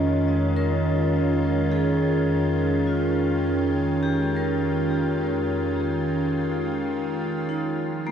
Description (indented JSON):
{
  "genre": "ambient",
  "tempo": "52 BPM",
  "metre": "3/4",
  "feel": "straight",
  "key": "unclear",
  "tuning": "A4 = 445 Hz",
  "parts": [
    { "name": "evolving wavetable pad", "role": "sustained chords", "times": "0.0-8.1 s", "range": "Eb3 to Bb4", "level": "-22 LUFS", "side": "right 1 dB", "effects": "chorus, built-in reverb" },
    { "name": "vibraphone with hard mallets", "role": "arpeggios", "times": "0.0-8.1 s", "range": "Ab3 to Eb5", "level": "-29 LUFS", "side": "left 3 dB", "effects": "diffuse ambient delay" },
    { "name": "deep rumbling drone", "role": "bass", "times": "0.0-8.1 s", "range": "F2", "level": "-30 LUFS", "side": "left 1 dB", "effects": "built-in reverb, phaser" }
  ],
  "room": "moderate plate reverb, RT60 3.1 s",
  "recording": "dreamy mix soaked in reverb",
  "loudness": "-21 LUFS",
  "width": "side -8 dB against mid",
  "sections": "0.0-8.1 A section",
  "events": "none",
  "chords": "0.0 Eb9sus4/F; 7.5 F7(no3)"
}